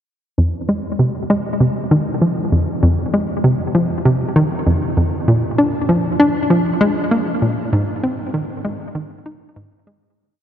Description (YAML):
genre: ambient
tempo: 98 BPM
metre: 4/4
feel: straight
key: F dorian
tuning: A4 = 440 Hz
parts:
  - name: hollow square pluck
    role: solo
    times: 0.4-10.1 s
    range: F2 to Eb4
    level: -15 LUFS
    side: equal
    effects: chorus, tape echo
room: wet huge ambient reverb, RT60 7.4 s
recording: in a vast, echoing space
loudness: -15 LUFS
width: side -9 dB against mid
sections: 0.4-10.2 A section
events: fade-out 6.9-10.2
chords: none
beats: | 0.38 0.99 1.61 2.22 | 2.83 3.44 4.05 4.67 | 5.28 5.89 6.50 7.12 | 7.73 8.34 8.95 9.56